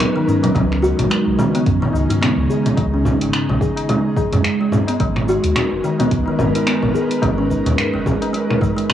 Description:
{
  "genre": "organic downtempo",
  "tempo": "108 BPM",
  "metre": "4/4",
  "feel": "swing 57% on 16ths",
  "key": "G# minor",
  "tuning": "A4 = 440 Hz",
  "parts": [
    { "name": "ethereal airy pad", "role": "sustained chords", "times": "0.0-8.9 s", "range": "C#3 to B4", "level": "-21 LUFS", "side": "right 1 dB", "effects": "ensemble chorus, built-in reverb, sidechain pumping, cassette tape, shimmer reverb" },
    { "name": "kalimba", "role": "arpeggios", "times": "0.0-8.9 s", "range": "D#3 to G#4", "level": "-20 LUFS", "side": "equal", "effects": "cassette tape, tape echo, shimmer reverb" },
    { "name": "deep house drum kit", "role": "drums", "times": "0.0-8.9 s", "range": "cabasa, congas, finger snaps, hi-hat", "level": "-21 LUFS", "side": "equal", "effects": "overdrive, cassette tape" },
    { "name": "tabla", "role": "percussion", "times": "0.3-8.9 s", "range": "none", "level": "-28 LUFS", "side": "left 4 dB", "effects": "none" },
    { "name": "warm sub bass", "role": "bass", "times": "0.6-8.0 s", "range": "F#1 to F#2", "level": "-22 LUFS", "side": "equal", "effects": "tube saturation" },
    { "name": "electronic kick drum", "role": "drums", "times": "0.6-8.7 s", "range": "none", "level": "-22 LUFS", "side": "equal", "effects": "overdrive, cassette tape" }
  ],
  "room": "moderate spring reverb, RT60 1.4 s",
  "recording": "home recording on cassette",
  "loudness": "-15 LUFS",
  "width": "side -10 dB against mid",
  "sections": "0.0-8.9 A section",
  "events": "none",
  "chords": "0.0 G#m7; 0.6 C#5; 5.0 G#m"
}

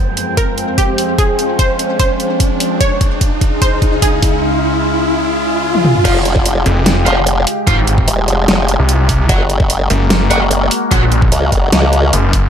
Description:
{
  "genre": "heavy wobble dubstep",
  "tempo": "148 BPM",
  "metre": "4/4",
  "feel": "half-time",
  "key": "F minor",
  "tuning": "A4 = 441 Hz",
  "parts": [
    { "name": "wide unison pluck", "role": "melody", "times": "0.0-4.4 s", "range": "G4 to Db5", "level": "-19 LUFS", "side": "right 1 dB", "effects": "digital delay" },
    { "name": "evolving wavetable pad", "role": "sustained chords", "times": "0.0-12.5 s", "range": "Db2 to G5", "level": "-18 LUFS", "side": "left 2 dB", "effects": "phaser, built-in reverb, sidechain pumping" },
    { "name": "riser", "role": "sound effects", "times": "0.0-6.0 s", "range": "none", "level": "-19 LUFS", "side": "right 1 dB", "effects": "none" },
    { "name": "dubstep drum kit", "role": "drums", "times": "0.2-12.4 s", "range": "crash cymbal, hi-hat, snare drum, toms", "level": "-17 LUFS", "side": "equal", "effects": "none" },
    { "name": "electronic kick drum", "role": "drums", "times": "0.4-12.4 s", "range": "none", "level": "-14 LUFS", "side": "equal", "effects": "none" },
    { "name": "thick fuzz guitar", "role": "stabs", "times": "6.0-11.0 s", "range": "F4 to Gb5", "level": "-20 LUFS", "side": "right 2 dB", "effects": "distortion, digital delay" },
    { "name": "formant-sweep wobble bass", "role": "bass", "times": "6.0-12.1 s", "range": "Eb1 to Db2", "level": "-13 LUFS", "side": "equal", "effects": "chorus, overdrive" },
    { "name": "snarling distorted saw bass", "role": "bass", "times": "6.7-12.5 s", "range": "F1 to C2", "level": "-12 LUFS", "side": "equal", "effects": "distortion, overdrive" }
  ],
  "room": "light reverb",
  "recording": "none",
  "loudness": "-11 LUFS",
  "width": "side -8 dB against mid",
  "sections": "0.0-6.0 A section; 6.0-12.5 B section",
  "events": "build-up 0.0-6.0; drum fill 0.0-4.4, 5.7-6.0; riser 0.0-6.0; drop 6.0-12.5",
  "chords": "0.0 Fmadd9; 2.8 Db; 6.0 Fmadd9; 9.3 Gbadd9"
}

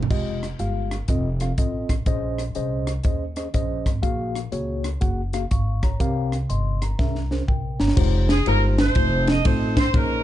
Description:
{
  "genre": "uptempo gospel",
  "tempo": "122 BPM",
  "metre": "4/4",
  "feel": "swing 66% on 8ths",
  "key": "F minor",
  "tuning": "A4 = 440 Hz",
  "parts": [
    { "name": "upright bass", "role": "bass", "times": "0.0-10.2 s", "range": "F1 to Eb2", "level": "-25 LUFS", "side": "equal", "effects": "none" },
    { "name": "crisp fusion drum kit", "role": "drums", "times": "0.0-10.1 s", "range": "crash cymbal, hi-hat, kick drum, ride cymbal, rim click, snare drum, toms", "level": "-22 LUFS", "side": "equal", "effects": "none" },
    { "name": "mellow tine electric piano", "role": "accompaniment", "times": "0.1-10.2 s", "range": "Bb2 to Db6", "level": "-27 LUFS", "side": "left 2 dB", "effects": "slow stereo tremolo" },
    { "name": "clear saxophone section", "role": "melody", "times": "8.3-10.2 s", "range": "Db4 to Eb5", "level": "-24 LUFS", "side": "right 1 dB", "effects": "none" }
  ],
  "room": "light reverb",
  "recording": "dark, warm production, nothing above 10.4 kHz",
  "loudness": "-20 LUFS",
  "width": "side -13 dB against mid",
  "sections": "0.1-8.0 A section; 8.0-10.2 B section",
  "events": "drum fill 7.0-8.0",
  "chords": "0.1 Fm9; 1.1 F7; 2.1 Bbm11; 4.0 Gbmaj9/Bb; 6.0 C7sus4; 7.0 C7b9b13; 8.0 Fm9; 9.0 F7"
}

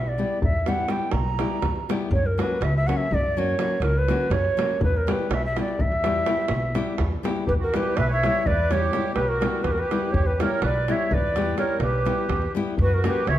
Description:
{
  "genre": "balkan folk, Balkan wedding band",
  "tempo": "247 BPM (eighths)",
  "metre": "11/8",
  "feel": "straight",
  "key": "E dorian sharp4",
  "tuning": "A4 = 440 Hz",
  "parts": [
    { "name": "breathy ney", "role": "melody", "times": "0.0-13.4 s", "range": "A#4 to A#5", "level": "-26 LUFS", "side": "right 1 dB", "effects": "none" },
    { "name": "upright bass", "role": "bass", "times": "0.0-13.4 s", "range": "B1 to F#2", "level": "-25 LUFS", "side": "equal", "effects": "none" },
    { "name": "nylon-string guitar", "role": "accompaniment", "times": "0.2-13.2 s", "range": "F#3 to G4", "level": "-28 LUFS", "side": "left 4 dB", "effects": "none" },
    { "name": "davul", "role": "percussion", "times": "0.4-13.4 s", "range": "none", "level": "-28 LUFS", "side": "right 1 dB", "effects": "none" },
    { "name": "accordion", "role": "second line", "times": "7.5-13.4 s", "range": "F#4 to C#5", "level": "-29 LUFS", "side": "right 5 dB", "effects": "light tremolo tuning, slapback echo" }
  ],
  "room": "moderate recital hall reverb, RT60 1.5 s",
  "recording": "none",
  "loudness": "-21 LUFS",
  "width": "side -12 dB against mid",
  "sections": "0.0-7.5 A section; 7.5-13.4 A section",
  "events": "none",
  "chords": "0.0 Em; 2.1 F#; 4.8 Em; 12.8 F#"
}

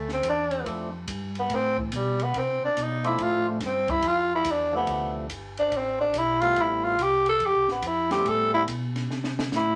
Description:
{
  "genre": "soul jazz organ trio",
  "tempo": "142 BPM",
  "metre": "4/4",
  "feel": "swing 65% on 8ths",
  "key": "A minor",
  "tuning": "A4 = 440 Hz",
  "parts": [
    { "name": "growling tenor saxophone", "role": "melody", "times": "0.0-9.8 s", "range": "E3 to A4", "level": "-26 LUFS", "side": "equal", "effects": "none" },
    { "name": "mellow tonewheel organ", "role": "bass", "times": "0.0-9.8 s", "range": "G1 to C3", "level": "-36 LUFS", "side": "equal", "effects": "chorus vibrato, slow rotary speaker" },
    { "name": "compact cocktail drum kit", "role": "drums", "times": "0.1-9.7 s", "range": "hi-hat, kick drum, ride cymbal, snare drum", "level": "-39 LUFS", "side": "equal", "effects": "none" },
    { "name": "percussive tonewheel organ", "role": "melody", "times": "0.6-8.7 s", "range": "C3 to E4", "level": "-35 LUFS", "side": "equal", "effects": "slow rotary speaker" }
  ],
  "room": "wet club reverb, RT60 0.5 s",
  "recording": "none",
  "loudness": "-26 LUFS",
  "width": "mono",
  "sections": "0.0-9.8 A section",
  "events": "tenor saxophone solo 0.0-9.8; drum fill 9.1-9.5",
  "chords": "0.0 Dm7; 1.5 Am; 3.2 Dm7; 6.6 Am7"
}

